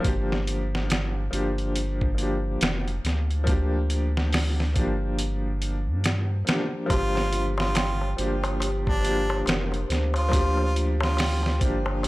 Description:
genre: trip hop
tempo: 70 BPM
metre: 4/4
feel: swing 60% on 16ths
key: G minor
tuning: A4 = 440 Hz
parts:
  - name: clear upright piano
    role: accompaniment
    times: 0.0-12.1 s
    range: F3 to G4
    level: -30 LUFS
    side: left 1 dB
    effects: tremolo, tape echo
  - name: warm sub bass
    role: bass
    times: 0.0-12.1 s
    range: F1 to G2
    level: -26 LUFS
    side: equal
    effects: tube saturation
  - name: trip hop sampler-style drum kit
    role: drums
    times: 0.0-12.1 s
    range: hi-hat, kick drum, snare drum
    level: -26 LUFS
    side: equal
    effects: none
  - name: warm harmonica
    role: melody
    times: 6.9-11.6 s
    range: D4 to F4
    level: -30 LUFS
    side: right 1 dB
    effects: tape echo
  - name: large celesta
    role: arpeggios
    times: 6.9-12.1 s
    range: F4 to G5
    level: -32 LUFS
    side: equal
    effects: tape echo
  - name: darbuka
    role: percussion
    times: 6.9-12.1 s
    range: none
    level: -34 LUFS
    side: left 2 dB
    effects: none
room: small room reverb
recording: dry, gritty hardware recording, transformer saturation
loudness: -22 LUFS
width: side -19 dB against mid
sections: 0.0-12.1 A section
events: none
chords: 0.0 Gm7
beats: | 0.04 0.90 1.75 2.61 | 3.47 4.32 5.18 6.04 | 6.89 7.75 8.61 9.47 | 10.32 11.18 12.04

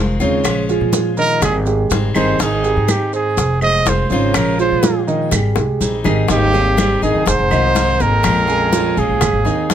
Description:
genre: latin, Cuban son and guajira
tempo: 123 BPM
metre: 4/4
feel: straight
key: Ab major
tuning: A4 = 442 Hz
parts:
  - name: picked steel-string acoustic guitar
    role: accompaniment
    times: 0.0-9.7 s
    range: C3 to Ab4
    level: -22 LUFS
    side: left 5 dB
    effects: none
  - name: dark concert grand piano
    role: arpeggios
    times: 0.0-9.7 s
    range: Db3 to Bb5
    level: -20 LUFS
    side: right 4 dB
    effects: none
  - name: upright bass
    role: bass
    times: 0.0-9.7 s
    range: F1 to Bb2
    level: -19 LUFS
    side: left 1 dB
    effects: none
  - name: bongos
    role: percussion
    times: 0.2-9.7 s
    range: none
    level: -24 LUFS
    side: left 9 dB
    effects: none
  - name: maracas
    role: percussion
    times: 0.2-9.7 s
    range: none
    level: -28 LUFS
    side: right 7 dB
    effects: none
  - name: claves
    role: percussion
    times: 0.4-9.5 s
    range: none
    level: -29 LUFS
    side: equal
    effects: none
  - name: congas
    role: percussion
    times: 0.5-9.7 s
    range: none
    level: -22 LUFS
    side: left 1 dB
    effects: none
  - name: breathy trumpet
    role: melody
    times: 1.2-9.7 s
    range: G4 to Eb5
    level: -18 LUFS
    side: right 3 dB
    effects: none
  - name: clear bass clarinet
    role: second line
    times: 6.3-9.7 s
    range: Eb2 to Ab2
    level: -24 LUFS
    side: left 5 dB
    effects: none
room: little or no reverb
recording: close, detailed microphones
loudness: -13 LUFS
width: side -9 dB against mid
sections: 0.0-6.3 A section; 6.3-9.7 B section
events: trumpet solo 0.0-6.3; drum fill 5.3-6.3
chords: 0.5 Bbm7; 1.4 Abmaj7; 3.4 Fm7; 4.3 Bbm7; 5.3 Abmaj7; 7.3 Fm7; 8.2 Bbm7; 9.2 Ab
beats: | 0.45 0.94 1.43 1.91 | 2.40 2.89 3.37 3.86 | 4.35 4.83 5.32 5.81 | 6.29 6.78 7.27 7.76 | 8.24 8.73 9.22 9.71

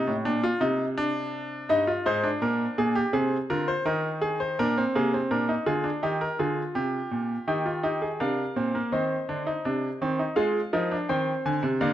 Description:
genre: classical, baroque-style 4-part fugue for grand piano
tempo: 83 BPM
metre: 4/4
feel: straight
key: Eb major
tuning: A4 = 444 Hz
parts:
  - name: bright baby grand piano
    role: solo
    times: 0.0-11.9 s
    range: G2 to Ab5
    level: -24 LUFS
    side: equal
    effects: none
room: moderate recital hall reverb, RT60 1.7 s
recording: close, detailed microphones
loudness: -24 LUFS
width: side -12 dB against mid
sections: 0.0-7.5 A section; 7.5-11.9 B section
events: none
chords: 0.3 Bb; 1.7 Eb/G; 3.1 Ab/C; 4.6 Bb7; 6.0 Eb; 8.9 Cm; 10.4 Fm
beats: 0.26 0.98 | 1.70 2.42 3.14 3.87 | 4.59 5.31 6.03 6.75 | 7.48 8.21 8.93 9.65 | 10.37 11.09 11.81

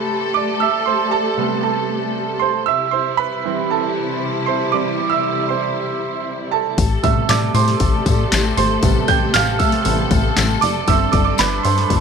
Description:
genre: piano-driven pop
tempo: 117 BPM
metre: 4/4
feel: straight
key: C major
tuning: A4 = 441 Hz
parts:
  - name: clear grand piano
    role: accompaniment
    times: 0.0-12.0 s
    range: B2 to G6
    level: -19 LUFS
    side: right 12 dB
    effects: none
  - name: warm studio string section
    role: sustained chords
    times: 0.0-12.0 s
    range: C3 to A4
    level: -22 LUFS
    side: left 5 dB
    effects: none
  - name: plucky analog bass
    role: bass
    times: 6.8-12.0 s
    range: F#1 to A2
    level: -19 LUFS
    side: left 3 dB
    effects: none
  - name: house drum kit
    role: drums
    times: 6.8-12.0 s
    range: handclaps, hi-hat, kick drum, snare drum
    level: -20 LUFS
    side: left 3 dB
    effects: none
  - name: tambourine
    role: percussion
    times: 6.8-11.8 s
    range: none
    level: -32 LUFS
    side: left 19 dB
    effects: none
room: light reverb, small room reverb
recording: 1960s-style stereo with parts hard left and right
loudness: -15 LUFS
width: side -6 dB against mid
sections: 0.0-12.0 A section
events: grand piano solo 0.0-12.0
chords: 0.0 C; 6.8 Am7; 10.9 Gsus4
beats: 0.11 | 0.62 1.13 1.65 2.16 | 2.67 3.18 3.70 4.21 | 4.72 5.24 5.75 6.26 | 6.77 7.29 7.80 8.31 | 8.82 9.34 9.85 10.36 | 10.88 11.39 11.90

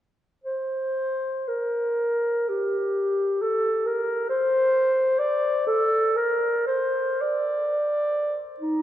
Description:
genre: classical, free, expressive piece for unaccompanied clarinet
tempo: 36-68 BPM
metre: 4/4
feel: rubato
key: C dorian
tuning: A4 = 440 Hz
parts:
  - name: mellow clarinet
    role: solo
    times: 0.4-8.8 s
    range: Eb4 to D5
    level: -22 LUFS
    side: equal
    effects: none
room: wet cathedral reverb, RT60 4.2 s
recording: none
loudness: -22 LUFS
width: side -12 dB against mid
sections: 0.4-8.6 A section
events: none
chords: none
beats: | 0.44 1.48 2.48 3.42 | 4.30 5.21 6.16 7.21 | 8.57

